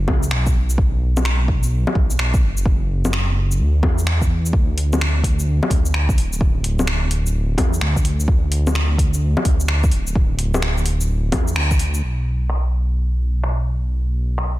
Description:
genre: future garage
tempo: 128 BPM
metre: 4/4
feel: swing 65% on 16ths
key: B minor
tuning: A4 = 439 Hz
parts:
  - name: dark detuned saw bass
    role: bass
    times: 0.0-14.6 s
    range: D1 to E2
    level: -19 LUFS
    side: equal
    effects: sidechain pumping
  - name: deep house drum kit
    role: drums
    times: 0.1-14.5 s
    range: bongos, finger snaps, hi-hat, shaker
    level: -23 LUFS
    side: left 1 dB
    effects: overdrive, low-pass filter on perc, soft clipping on snare, low-pass filter on snare, low-pass filter on hats, low-pass filter on room
  - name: electronic kick drum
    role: drums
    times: 0.1-11.8 s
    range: none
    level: -18 LUFS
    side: equal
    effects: overdrive
room: little or no reverb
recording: dense, heavily limited modern master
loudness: -16 LUFS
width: side -16 dB against mid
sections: 0.0-12.0 A section; 12.0-14.6 B section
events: band accent 11.6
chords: none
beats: 0.32 | 0.79 1.25 1.72 2.19 | 2.66 3.13 3.60 4.07 | 4.54 5.00 5.47 5.94 | 6.41 6.88 7.35 7.82 | 8.29 8.76 9.22 9.69 | 10.16 10.63 11.10 11.57 | 12.04 12.51 12.97 13.44 | 13.91 14.38

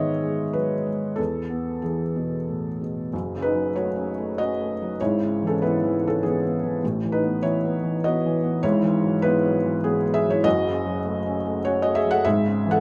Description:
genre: neoclassical minimalist piano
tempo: 98 BPM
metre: 3/4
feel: rubato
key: F# dorian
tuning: A4 = 440 Hz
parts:
  - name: felt-muted upright piano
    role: solo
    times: 0.0-12.8 s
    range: F#1 to F#5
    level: -24 LUFS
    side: equal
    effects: none
room: moderate small room reverb, RT60 0.6 s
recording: none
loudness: -24 LUFS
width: mono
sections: 0.0-3.1 A section; 3.1-12.8 B section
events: none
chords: 0.0 G#m; 1.2 E; 3.1 F#m; 5.0 C#m7/G#; 6.8 Aadd9; 8.6 Eadd9/G#; 10.5 F#m; 12.2 C#m/G#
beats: 0.55 | 1.19 1.83 2.48 | 3.13 3.76 4.37 | 4.99 5.60 6.21 | 6.82 7.43 8.03 | 8.63 9.24 9.85 | 10.45 11.05 11.65 | 12.24

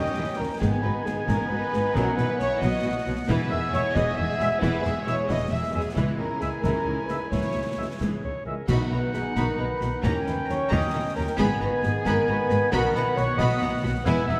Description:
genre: cinematic, heroic adventure film score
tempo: 90 BPM (dotted quarters)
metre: 6/8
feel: straight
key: B major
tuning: A4 = 439 Hz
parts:
  - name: warm symphonic violin section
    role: melody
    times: 0.0-14.4 s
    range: E4 to B5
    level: -40 LUFS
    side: equal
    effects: none
  - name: bright oboe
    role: second line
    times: 0.0-14.4 s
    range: F#5 to G#5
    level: -39 LUFS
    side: equal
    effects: none
  - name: clear clarinet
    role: second line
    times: 0.0-14.4 s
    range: B3 to C#5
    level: -39 LUFS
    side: equal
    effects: none
  - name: mellow concert flute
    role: second line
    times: 0.0-14.4 s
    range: E5 to E6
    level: -37 LUFS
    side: equal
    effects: none
  - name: warm symphonic violin section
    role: second line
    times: 0.0-14.4 s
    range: G#3 to G#4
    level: -40 LUFS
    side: equal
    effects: none
  - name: warm symphonic viola section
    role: accompaniment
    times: 0.0-14.4 s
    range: D#3 to D#4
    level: -37 LUFS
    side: equal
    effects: none
  - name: mellow French horn section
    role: sustained chords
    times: 0.0-14.4 s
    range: E4 to E5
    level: -32 LUFS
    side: equal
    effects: none
  - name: warm trombone section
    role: sustained chords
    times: 0.0-14.4 s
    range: B2 to D#4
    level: -40 LUFS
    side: equal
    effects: none
  - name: mellow trumpet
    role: stabs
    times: 0.0-14.4 s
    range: E5 to G#5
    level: -36 LUFS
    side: equal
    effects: none
  - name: dark symphonic double bass section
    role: bass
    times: 0.0-14.4 s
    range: E1 to D#2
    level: -33 LUFS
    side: equal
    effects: none
  - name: warm symphonic cello section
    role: bass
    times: 0.0-14.4 s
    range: C#2 to D#3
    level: -34 LUFS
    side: equal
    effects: none
  - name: concert snare drum, concert bass drum and clash cymbals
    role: drums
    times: 0.6-14.3 s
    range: none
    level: -35 LUFS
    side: equal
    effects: none
  - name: timpani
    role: percussion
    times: 1.9-2.6, 8.7-9.3 s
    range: B2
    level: -36 LUFS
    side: equal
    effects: none
room: wet scoring stage reverb, RT60 1.9 s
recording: none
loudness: -25 LUFS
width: mono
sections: 0.0-8.7 A section; 8.7-14.4 B section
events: none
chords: 0.0 D#7; 0.6 G#m; 2.0 B; 3.3 E; 6.0 C#m; 8.7 B; 10.0 D#7; 11.4 G#m; 12.7 B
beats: | 0.61 1.28 | 1.95 2.62 | 3.29 3.96 | 4.62 5.29 | 5.96 6.63 | 7.32 8.00 | 8.69 9.37 | 10.04 10.71 | 11.39 12.06 | 12.72 13.39 | 14.06

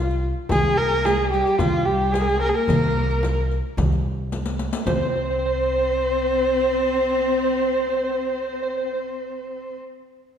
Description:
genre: Turkish makam ensemble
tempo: 110 BPM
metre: 4/4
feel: straight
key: C makam ussak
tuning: A4 = 437 Hz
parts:
  - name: rich kamancheh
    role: melody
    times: 0.0-9.8 s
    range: F4 to C5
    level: -22 LUFS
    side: equal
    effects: none
  - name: growling alto saxophone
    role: second line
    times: 0.0-9.0 s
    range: F4 to C5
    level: -29 LUFS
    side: right 2 dB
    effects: none
  - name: upright bass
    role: bass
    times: 0.0-9.8 s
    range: C2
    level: -25 LUFS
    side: equal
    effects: none
  - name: riq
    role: percussion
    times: 0.1-5.1 s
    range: none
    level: -33 LUFS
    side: left 2 dB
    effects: none
  - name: rich symphonic cello section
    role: second line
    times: 0.5-9.8 s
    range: F3 to C4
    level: -28 LUFS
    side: left 2 dB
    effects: none
  - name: darbuka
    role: percussion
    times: 0.5-5.1 s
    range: none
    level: -30 LUFS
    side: right 2 dB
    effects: none
  - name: frame drum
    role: percussion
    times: 0.5-5.1 s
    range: none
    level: -30 LUFS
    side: left 2 dB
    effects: none
room: moderate scoring stage reverb, RT60 1.5 s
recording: minimal, uncompressed stereo recording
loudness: -19 LUFS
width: side -8 dB against mid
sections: 0.0-4.9 A section; 4.9-9.2 B section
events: drum fill 4.3-4.9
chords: none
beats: | 0.51 1.05 1.60 2.15 | 2.69 3.23 3.78 4.33 | 4.87 5.42 5.96 6.50 | 7.05 7.59 8.14 8.68

